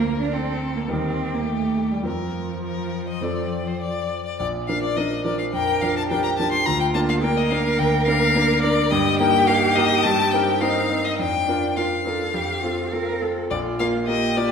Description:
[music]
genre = quick classical-period movement for piano trio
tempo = 105 BPM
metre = 4/4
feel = straight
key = Bb major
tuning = A4 = 442 Hz
[part]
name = clear violin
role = melody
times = 0.0-14.5 s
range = G4 to C6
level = -24 LUFS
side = left 6 dB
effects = none
[part]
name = rich cello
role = second line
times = 0.0-14.5 s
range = F3 to Bb4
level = -25 LUFS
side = right 3 dB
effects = none
[part]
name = clear concert grand piano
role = accompaniment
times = 0.0-14.5 s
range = Bb1 to Bb4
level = -23 LUFS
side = right 1 dB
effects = none
[sound]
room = wet recital hall reverb, RT60 1.5 s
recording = minimal, uncompressed stereo recording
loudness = -19 LUFS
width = side -6 dB against mid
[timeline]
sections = 0.0-4.4 A section; 4.4-14.5 B section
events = none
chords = 0.0 Bb/D; 0.9 Eb; 2.1 Fsus4; 3.2 F; 4.4 Bb; 6.7 Bb/D; 8.9 Eb/G; 10.1 Cm7/G; 11.2 Bb/F; 12.3 F; 13.5 Bb5

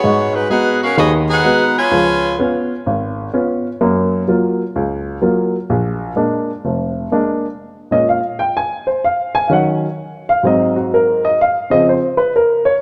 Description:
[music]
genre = jazz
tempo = 127 BPM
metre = 4/4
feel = swing 66% on 8ths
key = Bb minor from 7.6 s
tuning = A4 = 441 Hz
[part]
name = clear saxophone section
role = melody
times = 0.0-2.4 s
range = Ab3 to Ab5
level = -18 LUFS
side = equal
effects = none
[part]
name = warm baby grand piano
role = accompaniment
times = 0.0-12.7 s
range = F1 to Ab5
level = -17 LUFS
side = equal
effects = none
[sound]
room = wet echo chamber reverb, RT60 2.2 s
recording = dark, warm production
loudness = -16 LUFS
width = mono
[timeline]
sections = 0.0-7.6 A section; 7.6-12.8 B section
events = grand piano solo 7.6-12.8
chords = 0.0 Abm7; 1.9 Db7; 3.8 Gbmaj7; 5.7 Bb7; 7.6 Bbm7; 9.5 Ebm7; 10.4 Ab7; 11.4 Dbmaj7

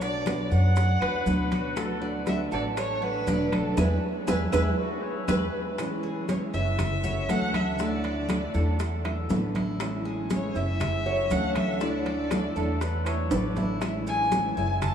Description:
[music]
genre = latin, Cuban son and guajira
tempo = 120 BPM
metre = 4/4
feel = straight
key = A major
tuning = A4 = 439 Hz
[part]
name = warm violin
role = melody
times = 0.0-14.9 s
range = A4 to A5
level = -31 LUFS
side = equal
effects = slapback echo
[part]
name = nylon-string guitar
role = accompaniment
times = 0.0-14.9 s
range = B2 to F#4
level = -31 LUFS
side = equal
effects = none
[part]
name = Cuban tres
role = arpeggios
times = 0.0-14.9 s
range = D4 to E5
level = -34 LUFS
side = right 1 dB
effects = none
[part]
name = upright bass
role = bass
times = 0.0-14.9 s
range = E1 to F#2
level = -29 LUFS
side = equal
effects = none
[part]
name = congas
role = percussion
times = 0.0-14.9 s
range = none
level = -32 LUFS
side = equal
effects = none
[part]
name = maracas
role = percussion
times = 0.0-14.9 s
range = none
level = -48 LUFS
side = right 6 dB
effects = none
[part]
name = timbales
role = percussion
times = 0.0-14.9 s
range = none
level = -38 LUFS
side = right 4 dB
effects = none
[part]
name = bongos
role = percussion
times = 0.3-14.9 s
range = none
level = -39 LUFS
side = left 6 dB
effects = none
[part]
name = claves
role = percussion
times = 0.3-14.9 s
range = none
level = -49 LUFS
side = left 6 dB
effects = none
[part]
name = warm trumpet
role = second line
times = 1.0-5.7, 12.3-13.7 s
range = E4 to D5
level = -39 LUFS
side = left 3 dB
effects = none
[sound]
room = wet cathedral reverb, RT60 7.0 s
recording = in a vast, echoing space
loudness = -24 LUFS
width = side -8 dB against mid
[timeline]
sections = 0.0-5.8 A section; 5.8-14.9 B section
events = band accent 3.8-5.8; drum fill 5.0-5.8, 13.3-13.8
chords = 0.0 Bm; 1.8 D; 3.8 E; 5.8 C#madd11; 6.8 F#m7; 7.8 Dsus2; 8.8 E7sus4; 9.8 Amaj7; 10.8 F#m7; 11.8 Dsus2; 12.8 E7sus4; 13.8 Amaj7

